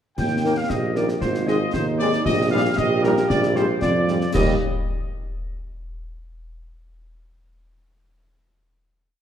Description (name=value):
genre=military-style march for wind band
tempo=115 BPM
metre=2/4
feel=straight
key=Eb major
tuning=A4 = 441 Hz
part: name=warm trumpet section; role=melody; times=0.2-4.6 s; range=Bb4 to G5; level=-28 LUFS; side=right 1 dB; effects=none
part: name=warm woodwind section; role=second line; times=0.2-4.6 s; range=Bb4 to G5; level=-28 LUFS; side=left 2 dB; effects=none
part: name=clear tuba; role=bass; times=0.2-4.6 s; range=Ab1 to F2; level=-23 LUFS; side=right 2 dB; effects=none
part: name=concert snare drum, clash cymbals and concert bass drum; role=drums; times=0.2-4.6 s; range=none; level=-27 LUFS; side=left 1 dB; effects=none
part: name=dark French horn section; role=accompaniment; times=0.4-4.6 s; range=G3 to Bb4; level=-27 LUFS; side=left 3 dB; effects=none
part: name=bright trombone section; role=sustained chords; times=0.4-4.5 s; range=Ab2 to Bb3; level=-30 LUFS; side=right 2 dB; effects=none
part: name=clear euphonium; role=second line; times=0.7-3.9 s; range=Eb4 to G4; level=-27 LUFS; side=right 4 dB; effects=none
room=moderate scoring stage reverb, RT60 1.7 s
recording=dark, warm production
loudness=-18 LUFS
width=side -9 dB against mid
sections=0.2-4.3 A section; 4.3-5.4 final chord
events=none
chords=0.2 Eb; 1.2 Ab; 2.3 Eb/Bb; 3.3 Bb13; 4.3 Eb